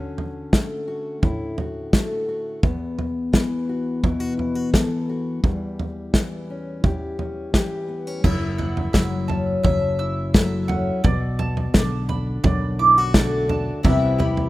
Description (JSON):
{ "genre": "indie folk with a building arrangement", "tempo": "86 BPM", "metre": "4/4", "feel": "straight", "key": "unclear", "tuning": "A4 = 440 Hz", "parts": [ { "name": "fingerpicked steel-string acoustic guitar", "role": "accompaniment", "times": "0.0-14.5 s", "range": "E2 to A4", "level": "-25 LUFS", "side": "left 2 dB", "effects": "none" }, { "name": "natural country drum kit", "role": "drums", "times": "0.2-14.5 s", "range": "crash cymbal, kick drum, snare drum, toms", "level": "-20 LUFS", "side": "equal", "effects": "none" }, { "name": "mandolin", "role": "arpeggios", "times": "8.2-14.5 s", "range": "D5 to E6", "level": "-24 LUFS", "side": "right 4 dB", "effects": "none" }, { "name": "fingered electric bass", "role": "bass", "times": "8.2-14.5 s", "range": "F#1 to C2", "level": "-26 LUFS", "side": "equal", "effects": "none" }, { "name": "dark grand piano", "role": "accompaniment", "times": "13.8-14.5 s", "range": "C2 to E5", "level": "-26 LUFS", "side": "right 2 dB", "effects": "none" }, { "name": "picked twelve-string acoustic guitar", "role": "accompaniment", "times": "13.8-14.5 s", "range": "C3 to G4", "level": "-22 LUFS", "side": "left 6 dB", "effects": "none" } ], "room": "small room reverb", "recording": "rough home demo mix", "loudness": "-19 LUFS", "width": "side -16 dB against mid", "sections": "0.0-8.2 A section; 8.2-14.5 B section", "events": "none", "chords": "0.0 Dmaj7; 2.6 Esus2; 5.4 Em6; 8.2 F#m7; 11.0 Bm7; 13.8 Cmaj7" }